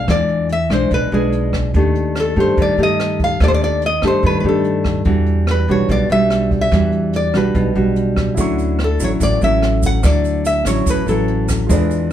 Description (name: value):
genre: bossa nova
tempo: 145 BPM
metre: 4/4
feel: straight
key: D major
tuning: A4 = 440 Hz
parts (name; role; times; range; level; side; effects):
- nylon-string guitar; melody; 0.0-11.5 s; G#4 to F#5; -19 LUFS; equal; none
- nylon-string guitar; accompaniment; 0.0-12.1 s; A2 to G4; -18 LUFS; equal; none
- upright bass; bass; 0.0-12.1 s; A1 to G2; -19 LUFS; equal; none
- jazz brush drum kit; drums; 0.1-12.0 s; hi-hat, kick drum, rim click; -23 LUFS; equal; none
- warm grand piano; accompaniment; 8.3-12.1 s; E4 to C#6; -26 LUFS; right 4 dB; none
- tube shaker; percussion; 8.4-12.1 s; none; -31 LUFS; right 4 dB; none
room: moderate studio reverb, RT60 0.6 s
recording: heard from further back in the room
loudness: -14 LUFS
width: side -10 dB against mid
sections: 0.0-12.1 A section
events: none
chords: 0.0 E7b9; 1.7 Ebmaj7#11; 5.1 Em9; 8.4 Dmaj9